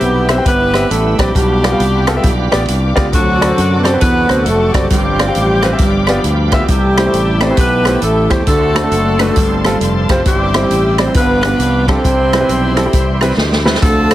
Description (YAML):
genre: uptempo gospel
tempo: 135 BPM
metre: 4/4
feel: swing 64% on 8ths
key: C major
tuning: A4 = 440 Hz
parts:
  - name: clear saxophone section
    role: melody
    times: 0.0-14.1 s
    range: A3 to C5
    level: -18 LUFS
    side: left 2 dB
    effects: none
  - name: dark trombone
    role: melody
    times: 0.0-14.1 s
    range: F#3 to C4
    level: -18 LUFS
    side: right 2 dB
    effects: none
  - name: clear concert grand piano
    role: accompaniment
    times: 0.0-14.1 s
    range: G2 to G5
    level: -18 LUFS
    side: equal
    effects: none
  - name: bright tonewheel organ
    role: sustained chords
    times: 0.0-14.1 s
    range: C3 to B4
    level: -24 LUFS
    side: right 2 dB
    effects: slow rotary speaker, overdrive, chorus vibrato
  - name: dark studio string section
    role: sustained chords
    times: 0.0-14.1 s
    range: D5 to E6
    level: -28 LUFS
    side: left 1 dB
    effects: none
  - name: modern bright fingered electric bass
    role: bass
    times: 0.0-14.1 s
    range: F1 to F#2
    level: -17 LUFS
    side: equal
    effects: none
  - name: swinging big-band drum kit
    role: drums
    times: 0.0-14.1 s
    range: hi-hat, kick drum, rim click, snare drum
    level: -16 LUFS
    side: equal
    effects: none
room: light reverb, small room ambience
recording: heavily compressed radio sound, multiband compression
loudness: -10 LUFS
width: side -14 dB against mid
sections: 0.0-14.1 A section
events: drum fill 13.4-13.8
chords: 0.0 Cmaj7; 1.3 G7/B; 3.1 D7; 4.9 G7sus4; 5.8 G7; 6.7 C6; 8.5 D7; 9.4 G9sus4; 10.3 C/G; 11.1 G7; 12.0 Cmaj7